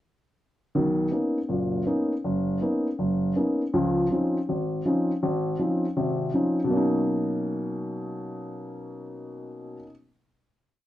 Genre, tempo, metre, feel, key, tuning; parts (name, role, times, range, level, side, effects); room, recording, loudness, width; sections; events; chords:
jazz; 162 BPM; 4/4; swing 64% on 8ths; B major; A4 = 445 Hz
dark upright piano; solo; 0.7-9.9 s; F#1 to D#4; -24 LUFS; equal
moderate studio reverb, RT60 0.7 s; worn, warbling old tape, cassette tape, warbly pitch drift; -23 LUFS; side -14 dB against mid
0.7-6.7 A section; 6.7-9.7 final chord
0.7 Bmaj9; 3.7 C#maj9; 6.7 Bmaj9